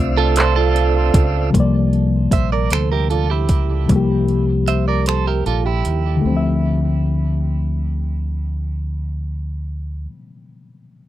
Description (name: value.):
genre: slow six-eight R&B.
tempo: 51 BPM (dotted quarters).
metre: 6/8.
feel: straight.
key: D minor.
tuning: A4 = 439 Hz.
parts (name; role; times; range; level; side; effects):
bright reed electric piano; accompaniment; 0.0-11.1 s; C3 to E5; -21 LUFS; left 4 dB; spring reverb.
tonewheel organ; sustained chords; 0.0-1.5 s; C4 to E5; -23 LUFS; right 3 dB; fast rotary speaker.
deep dub fingered electric bass; bass; 0.0-10.1 s; Bb1 to Eb2; -19 LUFS; equal; none.
clean electric guitar; second line; 0.2-6.8 s; E4 to E5; -22 LUFS; right 10 dB; harmonic tremolo, tape echo.
smooth R&B drum kit; drums; 0.4-6.0 s; finger snaps, handclaps, hi-hat, kick drum; -17 LUFS; equal; none.
room: little or no reverb.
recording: dry, close 1970s-style studio recording.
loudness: -16 LUFS.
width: side -13 dB against mid.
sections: 0.0-1.5 A section; 1.5-6.2 B section; 6.2-8.6 C section.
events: break 5.1-6.2.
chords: 0.0 Dm9; 1.5 C9sus4; 6.2 Dm9.